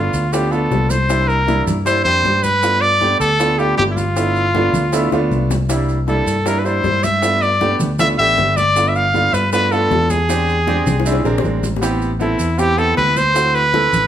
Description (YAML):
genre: Afro-Cuban jazz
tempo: 157 BPM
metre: 4/4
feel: straight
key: G mixolydian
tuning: A4 = 440 Hz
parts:
  - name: clear trumpet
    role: melody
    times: 0.0-14.1 s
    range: E4 to F5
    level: -16 LUFS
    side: equal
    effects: none
  - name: clear upright piano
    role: accompaniment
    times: 0.0-14.0 s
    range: G3 to Bb4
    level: -21 LUFS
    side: right 3 dB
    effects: none
  - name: fingered electric bass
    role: bass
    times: 0.0-14.1 s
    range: G1 to G2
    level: -20 LUFS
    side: equal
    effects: none
  - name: bongos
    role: percussion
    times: 0.1-14.1 s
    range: none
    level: -27 LUFS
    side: left 6 dB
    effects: none
  - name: congas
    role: percussion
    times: 0.1-14.1 s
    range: none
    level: -27 LUFS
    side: equal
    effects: none
  - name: maracas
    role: percussion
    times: 0.1-14.1 s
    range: none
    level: -31 LUFS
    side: right 4 dB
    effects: none
room: moderate large studio reverb, RT60 1.1 s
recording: band playing live in one room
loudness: -14 LUFS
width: side -10 dB against mid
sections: 0.0-14.1 A section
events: drum fill 5.1-5.7, 10.9-11.8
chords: 0.0 G9 (rootless); 1.1 C9; 2.6 G9; 5.7 C9; 7.2 G9; 10.3 E7alt; 11.8 Am7; 13.4 D9